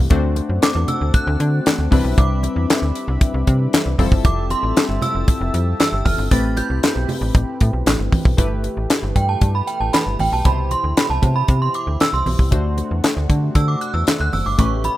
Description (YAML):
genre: early-eighties boogie funk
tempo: 116 BPM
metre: 4/4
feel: straight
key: G major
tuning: A4 = 440 Hz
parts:
  - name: funky polysynth comp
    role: accompaniment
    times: 0.0-15.0 s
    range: B2 to C5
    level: -25 LUFS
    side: left 3 dB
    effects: chorus
  - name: slap-like FM bass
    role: bass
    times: 0.0-14.9 s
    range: F1 to D3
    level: -20 LUFS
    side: equal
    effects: none
  - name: brassy analog pad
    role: sustained chords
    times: 0.1-15.0 s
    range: B2 to E6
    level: -32 LUFS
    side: right 1 dB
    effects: chorus
  - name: tight funk drum kit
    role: drums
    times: 0.1-15.0 s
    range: handclaps, hi-hat, kick drum, snare drum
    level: -17 LUFS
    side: equal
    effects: none
  - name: congas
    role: percussion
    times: 0.1-15.0 s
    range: none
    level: -27 LUFS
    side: right 2 dB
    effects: none
  - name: synth chime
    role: melody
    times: 0.6-15.0 s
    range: G5 to A6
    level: -23 LUFS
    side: right 3 dB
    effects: ensemble chorus
room: small room ambience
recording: rough home demo mix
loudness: -16 LUFS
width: side -15 dB against mid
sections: 0.0-8.4 A section; 8.4-15.0 B section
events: synth bell solo 8.4-15.0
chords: 0.1 D7; 1.9 Cmaj9; 4.0 Fmaj9; 6.3 Am9; 8.4 G69; 10.5 Cmaj7; 12.5 D7